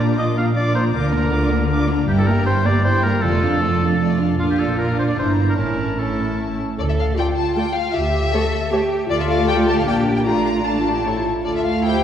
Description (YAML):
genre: quick classical-period movement for symphony orchestra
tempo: 155 BPM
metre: 3/4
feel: straight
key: D minor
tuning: A4 = 439 Hz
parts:
  - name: muted chamber violin section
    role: melody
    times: 0.0-12.0 s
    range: D5 to D6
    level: -26 LUFS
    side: left 4 dB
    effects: none
  - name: muted chamber violin section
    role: second line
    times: 0.0-12.0 s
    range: D4 to F5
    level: -27 LUFS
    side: left 2 dB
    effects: none
  - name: warm oboe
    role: second line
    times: 0.0-6.4 s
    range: F4 to F5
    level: -23 LUFS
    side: equal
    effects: none
  - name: muted chamber viola section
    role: accompaniment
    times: 0.0-12.0 s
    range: G3 to G4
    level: -22 LUFS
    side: right 1 dB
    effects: none
  - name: muted chamber double bass section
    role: bass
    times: 0.0-12.0 s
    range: F1 to D2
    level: -23 LUFS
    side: right 1 dB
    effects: none
  - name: muted studio cello section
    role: bass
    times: 0.0-12.0 s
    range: F2 to A4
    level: -23 LUFS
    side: right 2 dB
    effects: none
room: wet scoring stage reverb, RT60 2.0 s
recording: heard from further back in the room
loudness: -16 LUFS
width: side -9 dB against mid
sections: 0.0-6.8 A section; 6.8-12.0 B section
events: none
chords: 0.0 Bb; 0.9 Bb/D; 2.1 Edim/G; 3.2 Dm/F; 4.4 Bb; 5.2 Em7b5/G; 5.6 A; 6.8 Dm; 8.0 A7(no3)/D; 9.1 Dm; 9.9 Gm/Bb; 10.3 Dm/A; 11.1 A; 11.5 Dm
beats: 0.18 0.56 | 0.94 1.33 1.71 | 2.09 2.47 2.85 | 3.24 3.62 4.01 | 4.40 4.79 5.18 | 5.58 5.99 6.38 | 6.79 7.18 7.57 | 7.95 8.34 8.72 | 9.10 9.48 9.87 | 10.26 10.66 11.06 | 11.46 11.85